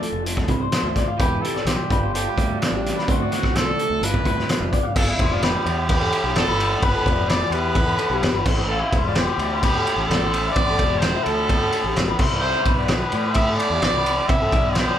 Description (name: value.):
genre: math rock and midwest emo.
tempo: 128 BPM.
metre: 4/4.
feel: straight.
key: C major.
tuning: A4 = 439 Hz.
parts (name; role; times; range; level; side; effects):
electric guitar through a small old amp; accompaniment; 0.0-6.8 s; G2 to C5; -30 LUFS; right 6 dB; spring reverb.
electric guitar through a small old amp; arpeggios; 0.0-15.0 s; F4 to F#5; -26 LUFS; left 4 dB; none.
loose indie drum kit; drums; 0.0-14.9 s; crash cymbal, hi-hat, kick drum, ride cymbal, snare drum; -21 LUFS; equal; none.
fuzz fingered electric bass; bass; 0.1-14.9 s; E1 to A2; -26 LUFS; equal; overdrive.
clear trumpet; melody; 1.2-15.0 s; D4 to E5; -25 LUFS; right 2 dB; none.
room: light reverb.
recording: band playing live in one room.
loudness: -18 LUFS.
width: side -10 dB against mid.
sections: 0.0-5.0 A section; 5.0-15.0 B section.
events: none.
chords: 0.0 F6; 1.2 Cmaj7/E; 1.9 G7; 3.1 D7; 4.0 G9; 8.5 Fmaj7 (rootless); 12.2 Cmaj9.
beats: 0.25 0.72 | 1.20 1.67 2.14 2.61 | 3.08 3.55 4.02 4.49 | 4.96 5.43 5.89 6.36 | 6.83 7.29 7.76 8.23 | 8.69 9.16 9.63 10.09 | 10.56 11.02 11.49 11.96 | 12.42 12.89 13.36 13.82 | 14.29 14.76.